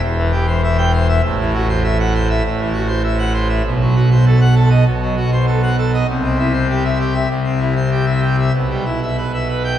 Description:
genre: classical, organ toccata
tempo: 99 BPM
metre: 4/4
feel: straight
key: E minor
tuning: A4 = 440 Hz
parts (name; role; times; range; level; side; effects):
- pipe organ, full organ; solo; 0.0-9.8 s; E1 to G5; -14 LUFS; equal; none
room: wet church reverb, RT60 2.9 s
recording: heard from further back in the room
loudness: -14 LUFS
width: side -11 dB against mid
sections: 0.0-9.8 A section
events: none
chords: 0.0 C/E; 1.2 F#m7b5/A; 3.7 B7b9; 6.1 C; 8.6 Em/B

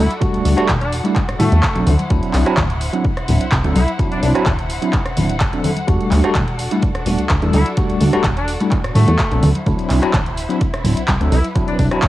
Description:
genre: filtered disco house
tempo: 127 BPM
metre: 4/4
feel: straight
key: unclear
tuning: A4 = 440 Hz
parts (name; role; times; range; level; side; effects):
- warm horn section; melody; 0.0-4.3, 7.5-11.9 s; A3 to E4; -25 LUFS; left 1 dB; sidechain pumping, low-pass filter, cassette tape
- bell-like tine electric piano; accompaniment; 0.0-12.1 s; F#3 to A4; -20 LUFS; equal; medium stereo tremolo, phaser, sidechain pumping, low-pass filter, cassette tape
- rich chamber violin section; sustained chords; 0.0-12.1 s; D4 to F#5; -28 LUFS; left 1 dB; sidechain pumping, low-pass filter, cassette tape
- plucky analog bass; bass; 0.0-12.1 s; D1 to A2; -17 LUFS; equal; sidechain pumping, low-pass filter
- house drum kit; drums; 0.1-12.1 s; handclaps, hi-hat, rim click; -24 LUFS; equal; overdrive, sidechain pumping on hats, cassette tape
- tambourine and congas; percussion; 0.1-12.1 s; none; -26 LUFS; left 1 dB; sidechain pumping on perc, low-pass filter on perc
- electronic kick drum; drums; 0.2-12.1 s; none; -20 LUFS; equal; cassette tape
room: studio ambience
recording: home recording on cassette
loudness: -14 LUFS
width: side -15 dB against mid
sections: 0.0-12.1 A section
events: none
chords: 0.0 Em11; 1.9 D9; 5.9 Em11; 9.4 D9

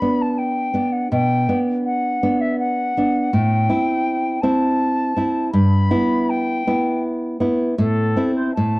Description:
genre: romantic duo for flute and classical guitar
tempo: 81 BPM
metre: 3/4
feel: rubato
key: unclear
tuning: A4 = 439 Hz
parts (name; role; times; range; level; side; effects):
- silver concert flute; melody; 0.0-8.8 s; A4 to B5; -22 LUFS; left 2 dB; cassette tape
- nylon-string guitar; accompaniment; 0.0-8.8 s; G2 to E4; -18 LUFS; equal; cassette tape
room: moderate spring reverb, RT60 1.8 s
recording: home recording on cassette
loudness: -17 LUFS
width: side -21 dB against mid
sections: 0.0-8.8 A section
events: none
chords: 0.0 G; 3.3 Am7; 5.5 Em/G; 7.8 Am

